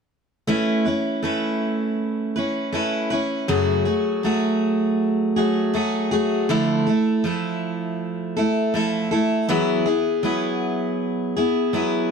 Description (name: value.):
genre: pop.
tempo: 80 BPM.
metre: 4/4.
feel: straight.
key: A major.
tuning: A4 = 440 Hz.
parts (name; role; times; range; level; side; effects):
picked steel-string acoustic guitar; accompaniment; 0.5-12.1 s; F#2 to B4; -20 LUFS; equal; none.
room: moderate studio reverb, RT60 0.6 s.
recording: none.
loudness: -20 LUFS.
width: side -6 dB against mid.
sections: 0.5-12.1 A section.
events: none.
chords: 0.5 Aadd9; 3.5 F#madd9; 6.5 Dmadd9; 9.5 Eadd9.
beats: | 0.48 1.23 1.98 2.74 | 3.49 4.24 4.99 5.75 | 6.50 7.25 8.00 8.75 | 9.50 10.25 10.99 11.74.